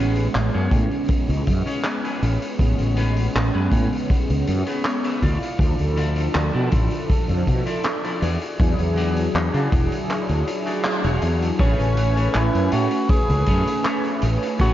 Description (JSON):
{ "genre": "vaporwave", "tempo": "80 BPM", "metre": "4/4", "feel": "straight", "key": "A major", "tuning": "A4 = 445 Hz", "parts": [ { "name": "mellow synth brass", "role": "accompaniment", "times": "0.0-14.7 s", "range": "F3 to G#5", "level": "-25 LUFS", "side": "right 1 dB", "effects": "wide subtle chorus, tape echo" }, { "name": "clean electric guitar", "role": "riff", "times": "0.0-14.7 s", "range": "C#4 to F5", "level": "-32 LUFS", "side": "left 1 dB", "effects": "lush chorus, tape echo" }, { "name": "fretless electric bass", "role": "bass", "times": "0.0-14.7 s", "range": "E1 to C#3", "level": "-21 LUFS", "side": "equal", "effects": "ensemble chorus" }, { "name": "raw garage drum kit", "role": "drums", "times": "0.2-14.7 s", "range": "handclaps, hi-hat", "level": "-29 LUFS", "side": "equal", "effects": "vintage 12-bit sampler grit" }, { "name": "kick drum", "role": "drums", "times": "0.7-14.7 s", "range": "none", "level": "-22 LUFS", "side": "equal", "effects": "vintage 12-bit sampler grit" }, { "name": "warm tenor saxophone", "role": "melody", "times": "11.6-14.7 s", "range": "C#4 to G#4", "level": "-25 LUFS", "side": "equal", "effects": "tape echo" } ], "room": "moderate concert hall reverb, RT60 2.1 s", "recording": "dark, warm production, cassette tape, nothing above 7.5 kHz", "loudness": "-18 LUFS", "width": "side -13 dB against mid", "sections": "0.0-11.6 A section; 11.6-14.7 B section", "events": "clean electric guitar fill 4.5-5.6; kick drops out 10.1-11.6; band accent 10.8-11.2", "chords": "0.0 Amaj9; 5.2 Dmadd9; 8.2 E9; 11.6 Amaj9" }